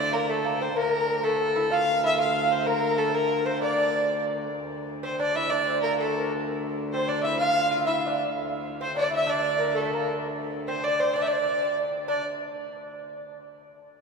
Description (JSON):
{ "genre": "medieval dance", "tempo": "127 BPM (dotted quarters)", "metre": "6/8", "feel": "straight", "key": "D minor", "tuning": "A4 = 439 Hz", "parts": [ { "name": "rich fiddle", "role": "melody", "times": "0.0-12.2 s", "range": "A4 to F5", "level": "-28 LUFS", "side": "equal", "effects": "none" }, { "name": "lute", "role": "second line", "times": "0.0-12.2 s", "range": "A3 to F4", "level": "-30 LUFS", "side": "right 4 dB", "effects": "none" }, { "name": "rich viola da gamba", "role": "drone", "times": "0.0-12.1 s", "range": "D2", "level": "-34 LUFS", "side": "left 1 dB", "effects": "none" }, { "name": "bright reedy bass recorder", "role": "second line", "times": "0.8-12.2 s", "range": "A4 to F5", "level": "-28 LUFS", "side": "left 2 dB", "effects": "none" } ], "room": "wet cathedral reverb, RT60 4.9 s", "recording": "recorded in a church or concert hall", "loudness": "-23 LUFS", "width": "side -4 dB against mid", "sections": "0.0-4.6 A section; 4.6-12.1 B section", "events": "none", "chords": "none" }